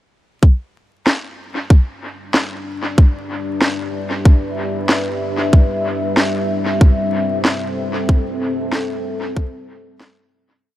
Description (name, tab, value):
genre	ambient dub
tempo	94 BPM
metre	4/4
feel	swing 59% on 16ths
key	E minor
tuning	A4 = 440 Hz
part	deep dark ambient pad	sustained chords	2.4-10.6 s	G3 to E5	-21 LUFS	left 1 dB	chorus, built-in reverb, vintage 12-bit sampler grit
part	electronic kick drum	drums	0.4-9.5 s	none	-10 LUFS	equal	none
part	electronic snare drum	drums	1.1-10.2 s	none	-20 LUFS	equal	dub echo
room	little or no reverb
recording	vinyl crackle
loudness	-15 LUFS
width	side -14 dB against mid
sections	0.4-10.6 groove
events	fade-in on ambient pad 0.4-10.6; fade-out 7.2-10.6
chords	0.4 Em7; 5.5 Am7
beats	| 0.43 1.06 1.70 2.34 | 2.98 3.62 4.26 4.89 | 5.53 6.17 6.81 7.45 | 8.09 8.72 9.36 10.00